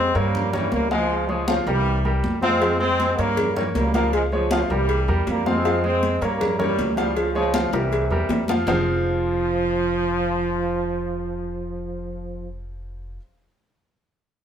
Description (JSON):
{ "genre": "latin, salsa", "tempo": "158 BPM", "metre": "4/4", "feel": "straight", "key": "F harmonic minor", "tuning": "A4 = 440 Hz", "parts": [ { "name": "bright trombone section", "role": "melody", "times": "0.0-12.5 s", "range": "C3 to C4", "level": "-24 LUFS", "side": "equal", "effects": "none" }, { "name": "clear baby grand piano", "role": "accompaniment", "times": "0.0-13.2 s", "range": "F3 to F5", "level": "-25 LUFS", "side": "equal", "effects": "none" }, { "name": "upright bass", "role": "bass", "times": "0.0-13.2 s", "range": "F1 to G2", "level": "-27 LUFS", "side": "equal", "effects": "none" }, { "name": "congas", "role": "percussion", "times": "0.2-8.8 s", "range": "none", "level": "-28 LUFS", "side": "equal", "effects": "none" }, { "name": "cowbell and bongos", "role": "percussion", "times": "2.6-8.8 s", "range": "none", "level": "-28 LUFS", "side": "left 1 dB", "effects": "none" } ], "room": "moderate stone room reverb, RT60 1.0 s", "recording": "band playing live in one room", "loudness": "-19 LUFS", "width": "side -8 dB against mid", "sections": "0.0-8.7 A section; 8.7-11.7 B section", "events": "drum fill 7.7-8.7", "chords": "0.3 Gm7b5; 1.1 Db; 1.9 C7; 2.6 Fm; 3.4 Gm7b5; 4.1 Db; 4.9 C7; 5.6 Fm; 6.4 Gm7b5; 7.2 Db; 7.9 C7; 8.7 Fm" }